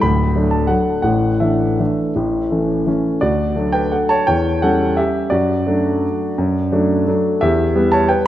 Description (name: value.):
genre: classical, piano waltz.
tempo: 159-201 BPM.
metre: 3/4.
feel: rubato.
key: D major.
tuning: A4 = 442 Hz.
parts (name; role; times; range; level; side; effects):
warm grand piano; solo; 0.0-8.3 s; D1 to B5; -14 LUFS; equal; none.
room: moderate concert hall reverb, RT60 2.2 s.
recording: none.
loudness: -15 LUFS.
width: side -12 dB against mid.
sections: 0.0-3.2 A section; 3.2-8.3 B section.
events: none.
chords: 0.0 D; 1.0 Asus4; 2.2 A; 3.2 D; 4.3 C#dim/E; 5.3 D/F#; 7.4 Em.